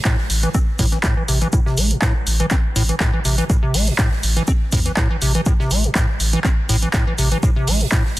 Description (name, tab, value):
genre	acid house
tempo	122 BPM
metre	4/4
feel	swing 54% on 16ths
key	A minor pentatonic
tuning	A4 = 440 Hz
part	punchy analog drum machine	drums	0.0-8.2 s	handclaps, hi-hat	-23 LUFS	right 1 dB	none
part	acid bass, square	riff	0.1-8.0 s	A2 to C4	-21 LUFS	equal	tube saturation, analog chorus, cassette tape, digital delay
part	damped 70s drum kit	drums	0.1-8.2 s	hi-hat, shaker, snare drum	-31 LUFS	right 2 dB	sidechain pumping on hats, high-pass filter on hats, high-pass filter on snare, sidechain pumping on perc, high-pass filter on perc, high-pass filter on room
part	electronic kick drum	drums	0.1-8.0 s	none	-18 LUFS	equal	none
part	warm sub bass	bass	0.3-8.2 s	A1 to E2	-20 LUFS	equal	tube saturation, sidechain pumping
room	small room ambience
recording	dense, heavily limited modern master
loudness	-16 LUFS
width	side -17 dB against mid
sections	0.0-8.2 A section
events	none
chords	0.0 A5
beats	0.05 0.55 1.04 | 1.53 2.02 2.51 3.00 | 3.50 3.99 4.48 4.97 | 5.46 5.96 6.45 6.94 | 7.43 7.92